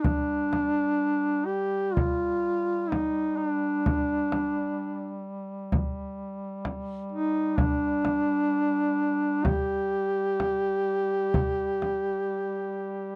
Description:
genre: caucasian folk, Caucasian lament.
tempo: 64 BPM.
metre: 4/4.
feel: rubato.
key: unclear.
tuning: A4 = 440 Hz.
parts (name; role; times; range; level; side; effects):
mellow duduk; melody; 0.0-13.2 s; D4 to G4; -28 LUFS; equal; none.
warm duduk; drone; 0.0-13.2 s; G3; -39 LUFS; equal; none.
frame drum; percussion; 0.0-12.0 s; none; -30 LUFS; equal; none.
room: little or no reverb.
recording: dry, close 1970s-style studio recording.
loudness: -27 LUFS.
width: mono.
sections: 0.0-13.2 A section.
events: none.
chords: none.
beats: | 0.03 1.00 1.97 2.92 | 3.87 4.80 5.73 6.65 | 7.58 8.51 9.44 10.39 | 11.33 12.28.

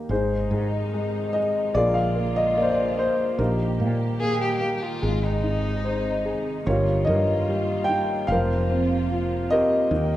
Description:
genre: acoustic folk-pop ballad.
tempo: 74 BPM.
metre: 4/4.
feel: straight.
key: Ab major.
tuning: A4 = 439 Hz.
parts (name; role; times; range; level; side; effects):
warm upright piano; melody; 0.0-10.2 s; Eb3 to G5; -23 LUFS; left 1 dB; none.
warm studio string section; sustained chords; 0.1-10.2 s; C3 to G5; -32 LUFS; right 1 dB; none.
woody fretless electric bass; bass; 0.1-10.2 s; F1 to Bb2; -26 LUFS; right 1 dB; none.
rich violin; second line; 4.2-6.5 s; Eb4 to Ab4; -28 LUFS; left 1 dB; none.
room: wet church reverb, RT60 2.5 s.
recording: recorded in a church or concert hall.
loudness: -21 LUFS.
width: side -14 dB against mid.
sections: 0.1-10.2 A section.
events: none.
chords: 0.1 Ab; 1.8 Bb7; 3.4 Eb/Bb; 5.0 Ab; 6.7 Ebadd9/G; 8.3 Bbsus2/F.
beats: | 0.10 0.93 1.75 2.57 | 3.39 4.21 5.03 5.85 | 6.66 7.47 8.28 9.09 | 9.91.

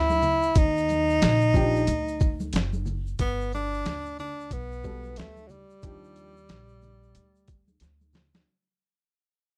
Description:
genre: hip hop, jazz-hop.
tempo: 91 BPM.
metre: 4/4.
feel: swing 60% on 16ths.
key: unclear.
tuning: A4 = 440 Hz.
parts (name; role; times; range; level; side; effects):
breathy tenor saxophone; melody; 0.0-7.8 s; F#3 to E4; -29 LUFS; equal; none.
upright bass; bass; 0.0-8.4 s; F#1 to Eb2; -32 LUFS; equal; none.
congas and tube shaker; percussion; 0.1-8.5 s; none; -40 LUFS; equal; none.
boom bap sampler-style drum kit; drums; 0.2-8.5 s; hi-hat, kick drum, shaker, snare drum; -27 LUFS; equal; none.
dark baby grand piano; accompaniment; 1.5-6.3 s; F3 to A4; -33 LUFS; equal; none.
room: little or no reverb.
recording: dry, close 1970s-style studio recording.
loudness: -25 LUFS.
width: mono.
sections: 0.0-8.5 A section.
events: fade-out 0.0-8.5; drum fill 7.8-8.5.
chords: 0.0 N.C.; 0.6 Ebmaj7(no3); 3.2 Gmaj9; 5.8 Ebmaj9.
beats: | 0.56 1.22 1.88 2.54 | 3.19 3.85 4.51 5.17 | 5.83 6.49 7.15 7.81.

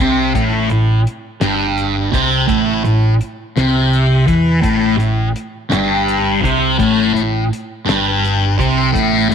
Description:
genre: psychedelic rock.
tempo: 56 BPM (dotted quarters).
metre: 6/8.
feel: straight.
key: A minor.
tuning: A4 = 440 Hz.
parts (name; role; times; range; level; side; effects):
thick fuzz guitar; riff; 0.0-9.3 s; G2 to E3; -13 LUFS; equal; distortion, phaser.
picked electric bass; bass; 0.0-9.3 s; G1 to E2; -22 LUFS; right 1 dB; transformer saturation.
cloth-damped thuddy drum kit; drums; 0.0-9.3 s; hi-hat, kick drum, snare drum; -23 LUFS; left 1 dB; none.
room: light reverb, small room ambience.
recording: 1960s-style stereo.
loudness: -13 LUFS.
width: side -7 dB against mid.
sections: 0.0-9.3 A section.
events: none.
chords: 0.0 Am7.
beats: | 0.35 1.42 | 2.49 3.56 | 4.64 5.71 | 6.79 7.87 | 8.94.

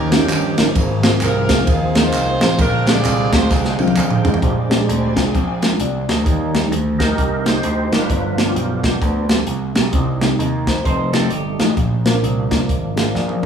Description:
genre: uptempo gospel.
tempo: 131 BPM.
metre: 4/4.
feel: swing 62% on 8ths.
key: Eb major.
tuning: A4 = 441 Hz.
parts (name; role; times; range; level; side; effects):
warm horn section; melody; 0.0-4.4 s; Bb3 to D5; -22 LUFS; equal; none.
mellow tine electric piano; accompaniment; 0.0-13.5 s; G2 to Eb5; -21 LUFS; left 1 dB; medium stereo tremolo.
overdriven tonewheel organ; sustained chords; 0.0-13.5 s; D3 to G5; -24 LUFS; right 3 dB; slow rotary speaker, chorus vibrato.
gritty slap bass; bass; 0.0-13.5 s; F1 to G2; -21 LUFS; right 1 dB; overdrive.
tight funk drum kit; drums; 0.1-13.5 s; hi-hat, kick drum, ride cymbal, snare drum, toms; -19 LUFS; equal; none.
tambourine and handclaps; percussion; 0.1-4.3 s; none; -29 LUFS; right 2 dB; none.
dark studio string section; sustained chords; 4.4-6.2 s; C5 to Ab5; -32 LUFS; left 2 dB; none.
clean electric guitar; second line; 10.9-11.7 s; C4 to C5; -25 LUFS; right 4 dB; none.
room: moderate large studio reverb, RT60 1.1 s.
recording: band playing live in one room, small room ambience.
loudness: -15 LUFS.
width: side -7 dB against mid.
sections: 0.0-4.4 A section; 4.4-6.3 B section; 6.3-13.5 C section.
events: drum fill 3.5-4.4, 13.1-13.5; tonewheel organ solo 4.4-6.3, 6.3-13.5.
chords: 0.0 Eb9; 0.8 Ab69; 2.6 Bb13; 6.3 Eb; 8.1 G7; 9.9 Cm; 10.9 F9; 11.8 Bb.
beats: 0.29 | 0.75 1.21 1.67 2.13 | 2.59 3.05 3.50 3.96 | 4.42 4.88 5.34 5.80 | 6.26 6.72 7.18 7.64 | 8.10 8.56 9.02 9.47 | 9.93 10.39 10.85 11.31 | 11.77 12.23 12.69 13.15.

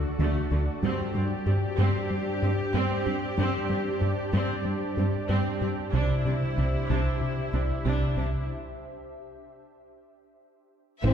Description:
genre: cinematic, hybrid orchestral and electronic film score.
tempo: 94 BPM.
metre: 4/4.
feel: straight.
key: unclear.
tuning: A4 = 440 Hz.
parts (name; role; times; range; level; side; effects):
clear symphonic viola section; accompaniment; 0.0-11.1 s; A3 to G4; -32 LUFS; right 1 dB; none.
ethereal airy pad; sustained chords; 0.0-11.1 s; D4 to E5; -34 LUFS; right 1 dB; ensemble chorus, built-in reverb.
tight sequenced synth; arpeggios; 0.0-11.1 s; C3 to G4; -35 LUFS; equal; chorus, ping-pong delay.
rubbery square bass; riff; 0.0-11.1 s; C2 to G3; -29 LUFS; left 1 dB; none.
rich symphonic cello section; bass; 0.2-11.1 s; G2 to D3; -31 LUFS; right 2 dB; none.
rich studio violin section; melody; 11.0-11.1 s; E5; -38 LUFS; left 4 dB; none.
rich studio violin section; second line; 11.0-11.1 s; C4; -28 LUFS; left 4 dB; none.
dark French horn section; sustained chords; 11.0-11.1 s; E3 to C4; -26 LUFS; left 4 dB; none.
rich symphonic double bass section; bass; 11.0-11.1 s; A1; -26 LUFS; right 6 dB; none.
saturated sub bass; bass; 11.0-11.1 s; A1; -30 LUFS; equal; none.
taiko ensemble; drums; 11.0-11.1 s; none; -29 LUFS; equal; none.
room: wet scoring stage reverb, RT60 1.9 s.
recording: heard from further back in the room.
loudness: -25 LUFS.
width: side -8 dB against mid.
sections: 0.0-11.0 A section.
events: break 8.5-11.0.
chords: 0.0 D; 0.8 Gsus4; 5.9 Cadd9.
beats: 0.19 | 0.83 1.47 2.11 2.75 | 3.38 4.02 4.66 5.30 | 5.94 6.58 7.21 7.85 | 8.49 9.13 9.77 10.41 | 11.04.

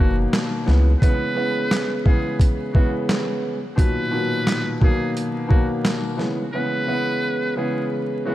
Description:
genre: hip hop, boom-bap hip-hop.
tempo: 87 BPM.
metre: 4/4.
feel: swing 61% on 16ths.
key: C# dorian.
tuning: A4 = 441 Hz.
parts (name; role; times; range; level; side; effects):
trumpet with metal mute; melody; 0.0-8.3 s; F#4 to B4; -29 LUFS; right 1 dB; high-pass filter, low-pass filter, ping-pong delay.
warm upright piano; accompaniment; 0.0-8.3 s; A#2 to B3; -23 LUFS; equal; high-pass filter, low-pass filter.
soft dub sub bass; bass; 0.0-1.0 s; F#1 to C#2; -17 LUFS; equal; none.
boom bap sampler-style drum kit; drums; 0.3-6.3 s; handclaps, hi-hat, kick drum, snare drum; -19 LUFS; equal; none.
room: light reverb, small room ambience.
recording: vinyl crackle.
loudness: -18 LUFS.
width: side -14 dB against mid.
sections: 0.0-8.3 A section.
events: break 1.0-6.5, 6.5-8.3.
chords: 0.0 Bmaj7; 0.7 C#m7; 3.8 Bmaj7; 6.2 C#m7.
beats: 0.33 | 1.02 1.71 2.40 3.09 | 3.78 4.47 5.16 5.85 | 6.54 7.23 7.92.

